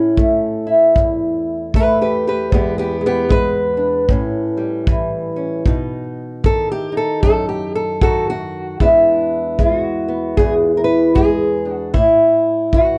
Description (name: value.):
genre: acoustic country blues, solo or duo.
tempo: 76 BPM.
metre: 4/4.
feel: swing 61% on 8ths.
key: unclear.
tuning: A4 = 440 Hz.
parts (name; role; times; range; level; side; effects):
fingerpicked old ladder-braced acoustic guitar; melody; 0.0-13.0 s; E2 to B4; -17 LUFS; equal; none.
kick drum; drums; 0.2-13.0 s; none; -20 LUFS; equal; none.
room: light reverb.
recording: nothing above 10.7 kHz.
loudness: -16 LUFS.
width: mono.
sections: 0.0-8.8 A section; 8.8-13.0 B section.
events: steel-string acoustic guitar solo 0.0-8.8.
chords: 0.0 A7; 2.5 E; 4.1 A7; 5.7 B; 8.8 E7; 11.9 A5.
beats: 0.17 0.96 1.74 | 2.52 3.31 4.09 4.88 | 5.66 6.45 7.23 8.02 | 8.80 9.59 10.38 11.16 | 11.95 12.74.